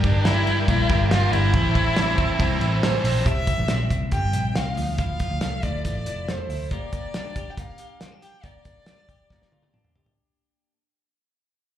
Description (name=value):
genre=jangly indie pop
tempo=139 BPM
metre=4/4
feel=straight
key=unclear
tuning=A4 = 444 Hz
part: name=rich violin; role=melody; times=0.0-10.0 s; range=D4 to G5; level=-27 LUFS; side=equal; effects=plate reverb, slapback echo
part: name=crunchy overdriven guitar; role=accompaniment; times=0.0-3.3 s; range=A2 to Bb4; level=-29 LUFS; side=right 4 dB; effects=plate reverb, slapback echo
part: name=ensemble organ-string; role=sustained chords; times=0.0-3.2 s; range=Bb4 to E6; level=-34 LUFS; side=equal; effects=ensemble chorus, plate reverb
part: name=twelve-string electric guitar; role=arpeggios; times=0.0-10.7 s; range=E3 to G4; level=-32 LUFS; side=left 6 dB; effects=plate reverb, slapback echo
part: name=vintage muted picked electric bass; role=bass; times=0.0-6.7 s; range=F1 to D2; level=-24 LUFS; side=equal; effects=none
part: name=cloth-damped thuddy drum kit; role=drums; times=0.0-10.2 s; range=hi-hat, kick drum, ride cymbal, snare drum, toms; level=-26 LUFS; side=equal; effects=none
room=light reverb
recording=live gig heard through the venue's PA, club reverb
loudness=-20 LUFS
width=side -11 dB against mid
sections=0.0-3.3 A section; 3.3-10.2 B section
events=fade-out 3.3-10.2; drum fill 9.3-10.2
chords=0.0 Gm; 1.5 Am; 3.3 C; 4.8 Dmadd9; 6.7 Gm